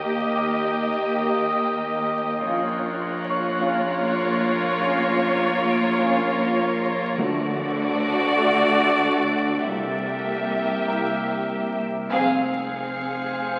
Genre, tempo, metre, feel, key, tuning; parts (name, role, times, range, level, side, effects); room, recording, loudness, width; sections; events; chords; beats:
cinematic, suspense film score; 100 BPM; 4/4; straight; A4 = 440 Hz
rich chamber violin section; melody; 0.0-13.6 s; Db5 to F5; -29 LUFS; equal
rich chamber violin section; second line; 0.0-13.6 s; F4 to Ab4; -30 LUFS; equal
warm chamber viola section; accompaniment; 0.0-13.6 s; A3 to C4; -32 LUFS; equal
drifting glass-harmonics texture; sustained chords; 0.0-13.6 s; F4 to Ab5; -30 LUFS; equal; chorus, built-in reverb
mellow French horn section; sustained chords; 0.0-11.1 s; A3 to G4; -33 LUFS; equal
rich chamber cello section; bass; 0.0-13.6 s; Eb2 to D3; -34 LUFS; equal
rich chamber double bass section; bass; 0.0-13.6 s; F1 to Eb2; -38 LUFS; equal
saturated sub bass; drone; 0.0-13.6 s; F1 to Eb2; -37 LUFS; equal
rich chamber violin section; texture; 0.0-6.8, 12.1-13.6 s; Eb6 to Db7; -40 LUFS; equal
worn celesta; texture; 0.4-13.6 s; Db5 to D7; -36 LUFS; equal
timpani; percussion; 7.2-8.0 s; D3; -33 LUFS; equal
wet scoring stage reverb, RT60 1.8 s; very old 78 rpm record, vinyl crackle; -23 LUFS; mono
0.0-12.1 A section; 12.1-13.6 B section
band accent 12.1-12.7
0.0 Eb; 2.4 Bbm; 7.2 D; 9.6 C7; 12.1 Fm
| 0.06 0.65 1.25 1.83 | 2.42 3.02 3.62 4.21 | 4.80 5.40 5.99 6.59 | 7.19 7.79 8.39 8.99 | 9.61 10.24 10.86 11.48 | 12.10 12.70 13.30